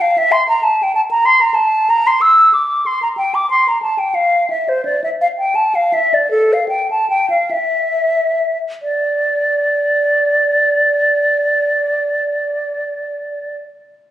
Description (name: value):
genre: classical, baroque-style fantasia for unaccompanied flute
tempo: 42-64 BPM (dotted quarters)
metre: 12/8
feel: rubato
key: D minor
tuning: A4 = 436 Hz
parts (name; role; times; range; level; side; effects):
- hollow concert flute; solo; 0.0-13.6 s; A4 to E6; -13 LUFS; equal; none
room: moderate recital hall reverb, RT60 1.5 s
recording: recorded on a phone in the room, club reverb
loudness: -13 LUFS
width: side -12 dB against mid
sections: 0.0-8.8 A section; 8.8-14.1 B section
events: slowing down 1.6-8.8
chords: none